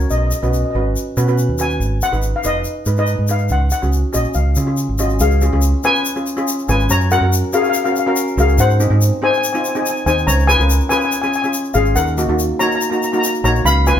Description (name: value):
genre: calypso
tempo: 142 BPM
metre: 4/4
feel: straight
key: unclear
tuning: A4 = 438 Hz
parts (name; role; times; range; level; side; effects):
- steel pan; melody; 0.0-14.0 s; F#4 to B5; -18 LUFS; left 3 dB; none
- steel pan; accompaniment; 0.0-14.0 s; G#3 to B4; -21 LUFS; right 2 dB; none
- fingered electric bass; bass; 0.0-14.0 s; E#1 to C#3; -16 LUFS; right 1 dB; none
- tube shaker; percussion; 0.0-14.0 s; none; -27 LUFS; left 5 dB; none
room: wet large studio reverb, RT60 1.0 s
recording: band playing live in one room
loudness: -14 LUFS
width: side -10 dB against mid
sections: 0.0-5.2 A section; 5.2-14.0 B section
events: none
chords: 0.1 Bsus2; 1.8 G#m; 3.5 C#sus4; 4.4 C#; 6.9 F#; 8.6 G#7; 10.3 C#7; 12.0 D#m